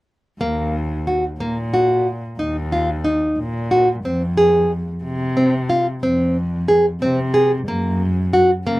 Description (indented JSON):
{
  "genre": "contemporary instrumental, chamber music in an uneven meter",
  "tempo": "182 BPM (eighths)",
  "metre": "11/8",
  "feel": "straight",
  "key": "Eb dorian",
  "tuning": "A4 = 437 Hz",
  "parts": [
    { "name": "nylon-string guitar", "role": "arpeggios", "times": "0.4-8.8 s", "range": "Bb3 to Ab4", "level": "-16 LUFS", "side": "equal", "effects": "none" },
    { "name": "dark cello", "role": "bass", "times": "0.4-8.8 s", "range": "Eb2 to Db3", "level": "-22 LUFS", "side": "equal", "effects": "none" }
  ],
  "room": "moderate booth ambience, RT60 0.2 s",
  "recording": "none",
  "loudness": "-16 LUFS",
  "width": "side -18 dB against mid",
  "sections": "0.4-8.8 A section",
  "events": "none",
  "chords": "0.4 Ebm; 4.0 Fm; 7.7 Gb",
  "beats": "| 0.41 0.74 1.07 1.40 1.73 2.06 2.39 2.72 3.05 3.38 3.71 | 4.04 4.37 4.70 5.03 5.36 5.69 6.02 6.36 6.68 7.01 7.34 | 7.67 8.01 8.34 8.66"
}